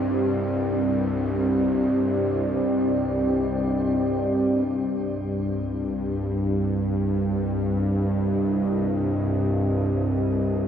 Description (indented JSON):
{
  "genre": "dark ambient drone",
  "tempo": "free time",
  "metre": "none",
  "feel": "none",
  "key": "C minor",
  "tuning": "A4 = 441 Hz",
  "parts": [
    { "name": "deep dark ambient pad", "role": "sustained chords", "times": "0.0-10.7 s", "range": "C4 to Eb5", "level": "-25 LUFS", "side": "equal", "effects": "chorus, built-in reverb, shimmer reverb" },
    { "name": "bowed-like drone", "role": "drone", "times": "0.0-10.7 s", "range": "C2 to G2", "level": "-24 LUFS", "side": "equal", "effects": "built-in reverb" }
  ],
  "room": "wet huge ambient reverb, RT60 7.0 s",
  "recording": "none",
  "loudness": "-22 LUFS",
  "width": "side -8 dB against mid",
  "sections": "0.0-4.7 A section; 4.7-10.7 B section",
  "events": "fade-in on ambient pad 4.7-10.7; filter sweep on synth drone 4.7-10.7",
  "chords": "0.0 Cmadd9"
}